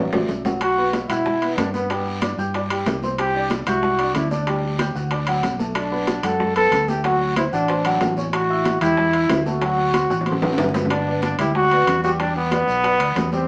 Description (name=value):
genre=latin, salsa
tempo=186 BPM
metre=4/4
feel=straight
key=G major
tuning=A4 = 440 Hz
part: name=bright trombone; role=melody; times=0.0-13.5 s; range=F#3 to A4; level=-23 LUFS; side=equal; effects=none
part: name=warm baby grand piano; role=accompaniment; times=0.0-13.5 s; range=F#3 to G6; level=-28 LUFS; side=equal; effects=none
part: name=fingered electric bass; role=bass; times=0.0-13.5 s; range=G1 to B2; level=-29 LUFS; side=equal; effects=none
part: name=bongos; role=percussion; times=0.1-13.5 s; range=none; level=-31 LUFS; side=equal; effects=none
part: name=timbales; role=percussion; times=0.1-13.3 s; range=none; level=-29 LUFS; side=equal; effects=none
part: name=congas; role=percussion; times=0.3-13.5 s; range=none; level=-33 LUFS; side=equal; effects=none
part: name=guiro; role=percussion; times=0.3-13.5 s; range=none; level=-40 LUFS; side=equal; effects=none
room=wet studio reverb, RT60 0.6 s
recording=none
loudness=-21 LUFS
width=mono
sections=0.6-10.9 A section; 10.9-13.5 B section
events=drum fill 0.0-0.6, 10.1-10.9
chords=0.0 D; 0.6 B5; 1.9 G; 3.2 Cadd9; 4.5 Dsus4; 5.1 Bm7; 7.0 D7; 8.3 A7; 9.6 D7; 10.9 Gmaj7; 12.2 Em7